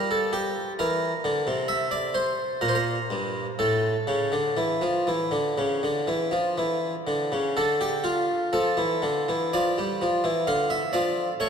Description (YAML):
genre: classical, baroque-style suite movement for harpsichord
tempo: 58-66 BPM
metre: 4/4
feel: rubato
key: D minor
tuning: A4 = 440 Hz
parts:
  - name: harpsichord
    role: solo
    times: 0.0-11.5 s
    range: G2 to F5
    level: -23 LUFS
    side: equal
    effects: none
room: wet cathedral reverb, RT60 4.4 s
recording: dark, warm production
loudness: -23 LUFS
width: side -7 dB against mid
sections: 0.0-11.5 A section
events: none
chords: 0.0 Em7b5; 3.6 A; 7.6 Dm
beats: 0.77 1.68 2.62 | 3.58 4.57 5.57 6.57 | 7.56 8.52 9.53 10.47 | 11.39